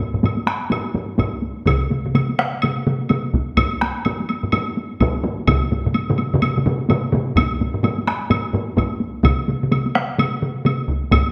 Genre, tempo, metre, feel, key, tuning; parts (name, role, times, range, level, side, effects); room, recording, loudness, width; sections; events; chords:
japanese traditional, taiko drum ensemble; 127 BPM; 4/4; swing 60% on 16ths
taiko ensemble; percussion; 0.0-11.2 s; -25 LUFS; equal
solo taiko drums; percussion; 0.1-11.3 s; -26 LUFS; equal
woodblock; percussion; 0.3-11.3 s; -29 LUFS; equal
taiko ensemble; percussion; 1.2-11.2 s; -24 LUFS; equal
solo taiko drums; percussion; 1.7-10.8 s; -23 LUFS; equal
wet recital hall reverb, RT60 1.3 s; -20 LUFS; mono
0.0-11.3 A section